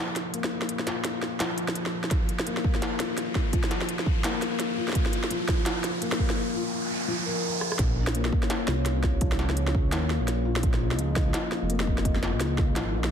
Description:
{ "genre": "half-time drum and bass", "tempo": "169 BPM", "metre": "4/4", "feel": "swing 59% on 16ths, half-time", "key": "Bb minor", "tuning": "A4 = 440 Hz", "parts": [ { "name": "dark analog pad", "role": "sustained chords", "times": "0.0-13.1 s", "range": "Bb3 to Eb5", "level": "-37 LUFS", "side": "left 1 dB", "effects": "chorus, sidechain pumping" }, { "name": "felt-muted upright piano", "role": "arpeggios", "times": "0.0-13.1 s", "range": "F3 to Bb4", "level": "-31 LUFS", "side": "left 4 dB", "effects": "low-pass filter, digital delay" }, { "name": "riser and noise sweep", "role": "sound effects", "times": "0.3-7.8 s", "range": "none", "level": "-35 LUFS", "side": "right 2 dB", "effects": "none" }, { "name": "industrial drum kit", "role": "drums", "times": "0.2-13.1 s", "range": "hi-hat, rim click, snare drum", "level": "-30 LUFS", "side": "right 1 dB", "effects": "none" }, { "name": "electronic kick drum", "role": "drums", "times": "2.1-12.7 s", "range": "none", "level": "-26 LUFS", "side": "right 1 dB", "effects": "none" }, { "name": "dark detuned saw bass", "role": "bass", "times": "7.8-13.1 s", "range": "F1 to Eb2", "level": "-27 LUFS", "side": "right 1 dB", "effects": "tube saturation" } ], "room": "moderate digital room reverb, RT60 1.3 s, digital ambience", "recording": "dense, heavily limited modern master", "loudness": "-24 LUFS", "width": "side -8 dB against mid", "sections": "0.0-7.8 A section; 7.8-13.1 B section", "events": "build-up 0.0-7.8; filter sweep on felt piano 0.0-7.8; riser 0.3-7.8; noise sweep 6.4-7.8; drum fill 7.6; drop 7.8-13.1", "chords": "0.0 Bbm", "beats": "0.34 | 0.69 1.04 1.40 1.75 | 2.11 2.46 2.82 3.17 | 3.53 3.88 4.24 4.60 | 4.95 5.31 5.66 6.02 | 6.37 6.73 7.08 7.44 | 7.79 8.15 8.50 8.86 | 9.21 9.57 9.92 10.28 | 10.63 10.99 11.34 11.70 | 12.05 12.41 12.76" }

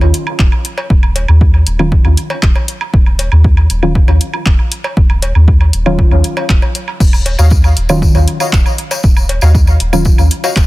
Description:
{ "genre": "dub techno", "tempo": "118 BPM", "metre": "4/4", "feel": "straight", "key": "Eb minor", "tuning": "A4 = 440 Hz", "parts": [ { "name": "deep mellow chord stab", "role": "stabs", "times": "0.0-10.2 s", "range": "Eb3 to F4", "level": "-17 LUFS", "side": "equal", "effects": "chorus, phaser, sidechain pumping, dub echo" }, { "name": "soft dub sub bass", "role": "bass", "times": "0.0-10.7 s", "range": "Eb1 to Eb2", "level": "-11 LUFS", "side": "equal", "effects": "tube saturation, sidechain pumping" }, { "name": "cowbell and woodblock", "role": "percussion", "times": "0.0-10.5 s", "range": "none", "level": "-23 LUFS", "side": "right 2 dB", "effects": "sidechain pumping on perc, dub echo" }, { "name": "punchy analog drum machine", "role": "drums", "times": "0.1-10.7 s", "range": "crash cymbal, handclaps, hi-hat", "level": "-20 LUFS", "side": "left 1 dB", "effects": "overdrive, dub echo" }, { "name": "electronic kick drum", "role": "drums", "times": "0.4-10.7 s", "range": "none", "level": "-10 LUFS", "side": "equal", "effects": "overdrive" }, { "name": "tambourine", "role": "percussion", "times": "7.0-10.7 s", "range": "none", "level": "-24 LUFS", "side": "left 5 dB", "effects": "none" }, { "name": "warbly lo-fi synth keys", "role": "riff", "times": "7.4-10.5 s", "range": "Gb4 to F5", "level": "-21 LUFS", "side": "left 3 dB", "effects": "chorus, sidechain pumping, dub echo" } ], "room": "little or no reverb", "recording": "dense, heavily limited modern master", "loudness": "-9 LUFS", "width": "side -18 dB against mid", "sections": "0.0-10.7 A section", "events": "none", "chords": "0.0 Ebm9", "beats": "0.39 | 0.90 1.41 1.92 2.43 | 2.94 3.44 3.95 4.46 | 4.97 5.48 5.99 6.50 | 7.00 7.51 8.02 8.53 | 9.04 9.55 10.05 10.56" }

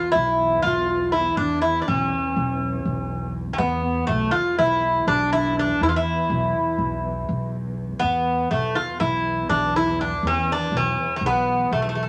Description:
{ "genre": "Turkish makam ensemble", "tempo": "244 BPM (eighths)", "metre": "9/8", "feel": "straight", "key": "E makam hicaz", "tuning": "A4 = 439 Hz", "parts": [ { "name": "Greek bouzouki", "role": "melody", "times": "0.0-12.1 s", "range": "A3 to F4", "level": "-24 LUFS", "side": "equal", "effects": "none" }, { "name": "clear clarinet", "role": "second line", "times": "0.0-7.5 s", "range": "A3 to F4", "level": "-29 LUFS", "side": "equal", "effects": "none" }, { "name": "dark chamber cello section", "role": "drone", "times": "0.0-12.1 s", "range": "E2", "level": "-36 LUFS", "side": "equal", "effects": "none" }, { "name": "upright bass", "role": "bass", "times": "0.2-12.1 s", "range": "B1 to E2", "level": "-30 LUFS", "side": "equal", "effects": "none" } ], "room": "wet studio reverb, RT60 0.8 s", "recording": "none", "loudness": "-22 LUFS", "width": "mono", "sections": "0.0-8.0 A section; 8.0-12.1 A section", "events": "none", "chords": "none", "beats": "0.14 0.38 0.63 0.88 1.12 | 1.37 1.62 1.86 2.11 2.36 2.60 2.85 3.10 3.34 | 3.59 3.83 4.08 4.33 4.58 4.82 5.07 5.31 5.56 | 5.81 6.05 6.30 6.55 6.79 7.04 7.29 7.53 7.78 | 8.02 8.27 8.52 8.76 9.01 9.26 9.50 9.75 9.99 | 10.24 10.49 10.73 10.98 11.22 11.47 11.72 11.96" }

